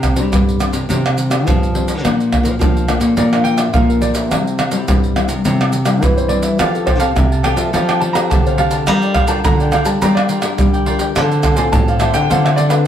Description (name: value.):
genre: samba and choro.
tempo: 105 BPM.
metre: 4/4.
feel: straight.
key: unclear.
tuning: A4 = 441 Hz.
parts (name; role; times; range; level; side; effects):
warm baby grand piano; melody; 0.0-12.8 s; A4 to Bb5; -20 LUFS; right 1 dB; none.
nylon-string guitar; accompaniment; 0.0-12.9 s; G2 to Bb4; -21 LUFS; left 5 dB; none.
nylon-string guitar; bass; 0.0-12.9 s; A2 to G3; -18 LUFS; equal; none.
maracas, surdo, pandeiro and tamborim; percussion; 0.0-12.9 s; none; -16 LUFS; right 1 dB; none.
cavaquinho; accompaniment; 6.6-12.9 s; F4 to A5; -24 LUFS; right 2 dB; none.
room: wet studio reverb, RT60 0.8 s.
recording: heard from further back in the room.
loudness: -12 LUFS.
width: side -10 dB against mid.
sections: 0.0-12.9 A section.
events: grand piano solo 0.0-12.9.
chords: 0.0 Csus2; 2.0 Bb; 4.3 C; 6.6 Fadd9; 8.9 Gm7; 11.2 Dm7.